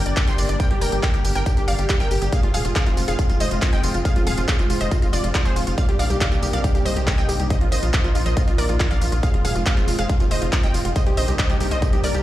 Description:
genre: uplifting trance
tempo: 139 BPM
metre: 4/4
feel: straight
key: unclear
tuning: A4 = 440 Hz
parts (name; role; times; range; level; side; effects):
- wide unison pluck; melody; 0.0-12.2 s; F4 to C6; -26 LUFS; right 1 dB; sidechain pumping, dub echo
- supersaw stab; second line; 0.0-12.2 s; F4 to C6; -31 LUFS; equal; phaser, sidechain pumping, dub echo
- analog string pad; sustained chords; 0.0-12.2 s; C3 to Eb4; -30 LUFS; left 1 dB; ensemble chorus, sidechain pumping
- tight sequencer bass; bass; 0.0-12.2 s; Eb1 to C2; -24 LUFS; equal; sidechain pumping
- big-room dance drum kit; drums; 0.1-12.2 s; handclaps, hi-hat, tambourine; -28 LUFS; equal; studio reverb
- electronic kick drum; drums; 0.2-11.9 s; none; -20 LUFS; equal; studio reverb
room: digital ambience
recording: played on a big sound system in a bare room, large studio reverb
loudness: -18 LUFS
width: side -14 dB against mid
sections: 0.0-12.2 A section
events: none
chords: 0.0 Gm; 2.3 Fm; 5.8 Cm7; 7.5 Bbsus4; 9.2 Fm; 11.0 Cm7

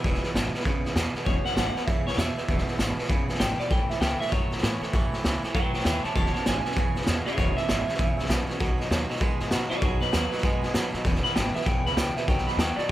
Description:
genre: rockabilly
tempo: 196 BPM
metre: 4/4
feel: swing 62% on 8ths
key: E major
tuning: A4 = 440 Hz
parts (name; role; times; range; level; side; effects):
- electric guitar through a small old amp; melody; 0.0-12.9 s; E4 to B5; -30 LUFS; right 1 dB; tape echo
- picked steel-string acoustic guitar; accompaniment; 0.0-12.9 s; C#3 to C#5; -36 LUFS; left 2 dB; none
- twangy electric guitar; riff; 0.0-12.9 s; E2 to G#3; -32 LUFS; right 4 dB; none
- upright bass; bass; 0.0-12.9 s; E1 to B2; -32 LUFS; equal; none
- raw garage drum kit; drums; 0.0-12.8 s; hi-hat, kick drum, snare drum; -26 LUFS; equal; none
room: little or no reverb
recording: none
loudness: -23 LUFS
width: side -14 dB against mid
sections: 0.0-12.9 A section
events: clean electric guitar solo 0.0-12.9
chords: 0.0 E6; 3.7 A6; 6.2 E6; 8.6 B6; 11.1 E6; 12.3 B6

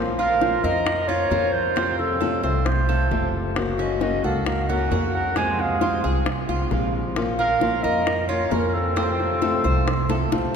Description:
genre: latin, Cuban son and guajira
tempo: 133 BPM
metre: 4/4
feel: straight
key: Bb harmonic minor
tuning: A4 = 440 Hz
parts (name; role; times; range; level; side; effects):
- fingerpicked swing-style acoustic guitar; accompaniment; 0.0-10.6 s; C3 to C5; -27 LUFS; left 3 dB; none
- upright bass; bass; 0.0-10.6 s; Gb1 to F2; -26 LUFS; right 1 dB; none
- mellow clarinet; melody; 0.2-10.3 s; A4 to Ab5; -24 LUFS; right 1 dB; none
- warm trumpet; second line; 0.2-10.3 s; C4 to C5; -32 LUFS; right 3 dB; none
- Cuban tres; arpeggios; 0.2-10.5 s; Ab3 to C5; -30 LUFS; right 4 dB; none
- bongos; percussion; 0.2-10.4 s; none; -29 LUFS; left 3 dB; none
room: wet cathedral reverb, RT60 5.1 s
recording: recorded in a church or concert hall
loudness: -20 LUFS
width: side -6 dB against mid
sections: 0.0-10.6 A section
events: drum fill 10.1-10.6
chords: 0.0 Bbmadd9; 1.8 F; 3.6 Gb; 5.4 Fm; 7.2 Bbm; 9.0 F

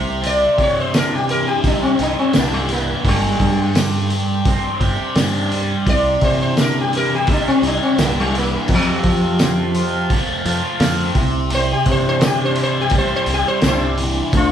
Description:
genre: psychedelic rock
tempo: 85 BPM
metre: 4/4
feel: straight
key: unclear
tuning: A4 = 441 Hz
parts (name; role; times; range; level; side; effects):
- mellow tonewheel organ; sustained chords; 0.0-14.5 s; C5 to D6; -31 LUFS; right 2 dB; slow rotary speaker
- thick fuzz guitar; riff; 0.0-14.5 s; F2 to G4; -21 LUFS; equal; distortion, phaser
- picked electric bass; bass; 0.0-14.5 s; G1 to F3; -22 LUFS; equal; none
- cloth-damped thuddy drum kit; drums; 0.2-14.5 s; hi-hat, kick drum, snare drum; -20 LUFS; equal; none
- sitar; melody; 0.3-14.5 s; C3 to D5; -19 LUFS; left 1 dB; none
- tambourine; percussion; 0.9-13.8 s; none; -35 LUFS; left 6 dB; none
room: wet studio ambience, RT60 0.4 s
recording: band playing live in one room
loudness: -15 LUFS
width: side -9 dB against mid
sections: 0.0-14.5 A section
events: sitar solo 0.0-14.5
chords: 0.0 Cadd9; 3.1 Gsus4; 5.9 Cadd9; 8.7 F; 11.2 Cadd9

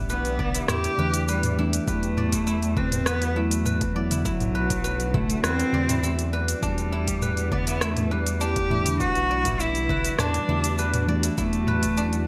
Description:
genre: organic downtempo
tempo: 101 BPM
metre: 4/4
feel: straight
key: E minor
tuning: A4 = 438 Hz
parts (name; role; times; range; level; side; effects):
- muted felt-like synth keys; accompaniment; 0.0-12.3 s; E3 to E4; -35 LUFS; equal; chorus, sidechain pumping, delay
- granular cloud pad; sustained chords; 0.0-12.3 s; G3 to D5; -38 LUFS; equal; built-in reverb, sidechain pumping
- guzheng; arpeggios; 0.0-12.3 s; D4 to D5; -34 LUFS; equal; delay
- round analog bass; bass; 0.0-12.3 s; B1 to E2; -30 LUFS; equal; sidechain pumping
- rich cello; melody; 0.1-12.3 s; F#3 to G4; -30 LUFS; equal; delay
- organic electronic drum kit; drums; 0.1-12.2 s; hi-hat, rim click, shaker, toms; -31 LUFS; equal; studio reverb, gated reverb
- electronic kick drum; drums; 0.4-11.9 s; none; -33 LUFS; equal; overdrive, studio reverb
- darbuka; percussion; 0.4-11.9 s; none; -37 LUFS; equal; none
room: moderate plate reverb, RT60 1.2 s, digital ambience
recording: bright 1980s-style digital production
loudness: -24 LUFS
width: mono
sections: 0.0-12.3 A section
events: none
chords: 0.0 Em7; 1.9 D7/E; 6.6 Em7; 11.4 D/E

